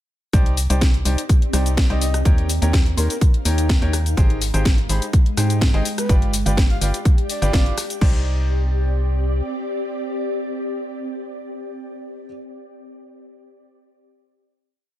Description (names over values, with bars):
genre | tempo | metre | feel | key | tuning
piano house | 125 BPM | 4/4 | straight | C minor | A4 = 441 Hz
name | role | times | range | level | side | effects
clear upright piano | riff | 0.3-12.3 s | Eb4 to C6 | -29 LUFS | left 1 dB | sidechain pumping, tape echo
organ-like FM bass | bass | 0.3-9.4 s | G1 to Ab2 | -20 LUFS | equal | sidechain pumping
electronic kick drum | drums | 0.3-8.1 s | none | -16 LUFS | equal | none
house drum kit | drums | 0.3-8.1 s | crash cymbal, hi-hat, rim click, shaker, snare drum | -25 LUFS | left 1 dB | none
ethereal airy pad | texture | 1.0-12.4 s | Ab3 to G5 | -29 LUFS | left 1 dB | ensemble chorus, built-in reverb, sidechain pumping
breathy flute-like synth lead | melody | 1.9-7.8 s | Bb4 to F5 | -31 LUFS | equal | chorus, tape echo
room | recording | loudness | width
little or no reverb | none | -17 LUFS | side -14 dB against mid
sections
0.3-8.0 drop; 8.0-11.9 final chord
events
drop 0.3-8.0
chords
0.3 Cmadd9; 2.3 Eb7; 4.2 Abmaj7; 5.9 G7; 8.0 Cmadd9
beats
| 0.33 0.81 1.29 1.77 | 2.25 2.73 3.21 3.69 | 4.17 4.65 5.13 5.61 | 6.09 6.57 7.05 7.53 | 8.01 8.49 8.97 9.45 | 9.93 10.41 10.89 11.37